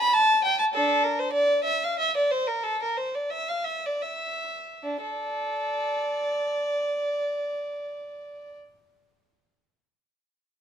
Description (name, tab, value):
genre	classical, baroque-style suite movement for unaccompanied violin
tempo	73-102 BPM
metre	3/4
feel	rubato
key	D minor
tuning	A4 = 435 Hz
part	warm violin	solo	0.0-8.6 s	D4 to B5	-24 LUFS	equal	none
room	moderate stone room reverb, RT60 1.3 s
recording	minimal, uncompressed stereo recording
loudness	-24 LUFS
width	side -8 dB against mid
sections	0.0-4.8 A section; 4.8-9.4 B section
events	slowing down 0.0-4.8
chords	none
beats	0.13 | 0.72 1.34 1.98 | 2.63 3.31 4.04 | 4.83 5.59 6.35 | 7.11 7.87